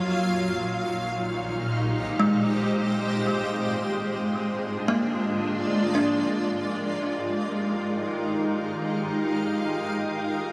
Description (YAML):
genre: ambient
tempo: 56 BPM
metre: 3/4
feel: straight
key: Bb mixolydian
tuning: A4 = 440 Hz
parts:
  - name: granular cloud pad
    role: sustained chords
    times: 0.0-10.5 s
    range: Bb2 to F5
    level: -28 LUFS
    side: equal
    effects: built-in reverb
  - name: glass harmonica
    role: texture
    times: 0.0-10.5 s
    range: F4 to G5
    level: -40 LUFS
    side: equal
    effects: none
  - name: kalimba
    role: arpeggios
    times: 2.2-7.0 s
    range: Ab3 to D4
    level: -30 LUFS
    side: equal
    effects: diffuse ambient delay
room: wet shimmer reverb, RT60 7.6 s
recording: none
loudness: -26 LUFS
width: mono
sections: 0.0-6.5 A section; 6.5-10.5 B section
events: none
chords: 0.1 Abmaj7/Bb; 3.3 Bb7; 6.5 Bb7sus4; 9.7 Abmaj9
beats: | 0.06 1.13 2.20 | 3.27 4.34 5.41 | 6.48 7.55 8.63 | 9.70